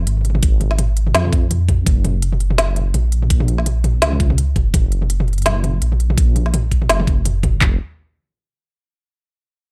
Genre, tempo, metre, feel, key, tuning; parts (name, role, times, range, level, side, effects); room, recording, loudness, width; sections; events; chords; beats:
half-time drum and bass; 167 BPM; 4/4; swing 56% on 16ths, half-time; A4 = 440 Hz
dark detuned saw bass; bass; 0.0-7.8 s; F1 to F2; -20 LUFS; equal
organic electronic drum kit; drums; 0.1-7.5 s; hi-hat, snare drum, toms; -23 LUFS; equal; studio reverb
drum and bass drum kit; drums; 0.4-7.7 s; handclaps, kick drum, toms; -18 LUFS; equal; overdrive, studio reverb
little or no reverb; dark, warm production; -17 LUFS; mono
0.0-7.6 A section; 7.6-9.1 B section
filter sweep on detuned saw bass 0.0-7.6
0.07 | 0.43 0.79 1.15 1.50 | 1.86 2.22 2.58 2.94 | 3.30 3.66 4.02 4.38 | 4.74 5.10 5.46 5.82 | 6.18 6.54 6.89 7.25 | 7.61